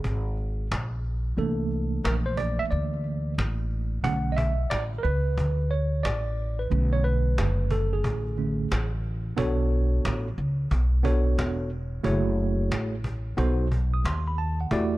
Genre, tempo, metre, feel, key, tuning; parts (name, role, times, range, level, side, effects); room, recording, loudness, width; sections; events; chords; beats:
hip hop, jazz-hop; 90 BPM; 4/4; swing 65% on 16ths; B dorian; A4 = 441 Hz
mellow tine electric piano; accompaniment; 0.0-15.0 s; D3 to D#6; -29 LUFS; right 2 dB; medium stereo tremolo
upright bass; bass; 0.0-15.0 s; E1 to E2; -26 LUFS; equal
cajon; drums; 0.0-14.9 s; -34 LUFS; equal
small room ambience; dark, warm production; -24 LUFS; side -18 dB against mid
0.0-9.4 A section; 9.4-15.0 B section
tine electric piano solo 0.0-9.4
0.0 G#sus2; 1.4 C13; 4.0 Bm9; 12.0 F#m9; 13.4 B7b9
0.04 0.71 | 1.38 2.04 2.71 3.38 | 4.04 4.71 5.38 6.04 | 6.71 7.38 8.04 8.71 | 9.38 10.04 10.71 11.38 | 12.04 12.71 13.38 14.04 | 14.71